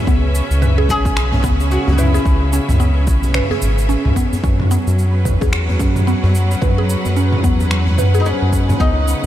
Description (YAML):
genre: organic downtempo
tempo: 110 BPM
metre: 4/4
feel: swing 60% on 16ths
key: unclear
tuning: A4 = 443 Hz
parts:
  - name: rich symphonic string section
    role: sustained chords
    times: 0.0-9.3 s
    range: C#3 to F#5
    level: -23 LUFS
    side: equal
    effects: vintage 12-bit sampler grit, sidechain pumping
  - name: mallet-like synth pluck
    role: arpeggios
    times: 0.0-9.0 s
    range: B3 to B4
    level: -23 LUFS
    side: right 1 dB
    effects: chorus, phaser, analog delay
  - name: round analog bass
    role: bass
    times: 0.1-9.3 s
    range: G#1 to F#2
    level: -16 LUFS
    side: equal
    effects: sidechain pumping
  - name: deep house drum kit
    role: drums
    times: 0.1-9.3 s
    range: cabasa, finger snaps, toms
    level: -22 LUFS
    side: equal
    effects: overdrive
  - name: electronic kick drum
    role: drums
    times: 0.1-8.9 s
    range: none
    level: -18 LUFS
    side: equal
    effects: overdrive
  - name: oud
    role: melody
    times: 0.9-3.0, 8.2-9.3 s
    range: C#4 to G#4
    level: -24 LUFS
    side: left 2 dB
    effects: analog delay
  - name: djembe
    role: percussion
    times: 1.0-8.8 s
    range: none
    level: -27 LUFS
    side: left 1 dB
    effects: none
room: light reverb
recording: none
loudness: -13 LUFS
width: side -12 dB against mid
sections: 0.0-9.3 A section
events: none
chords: 0.1 C#m7; 4.4 F#7sus4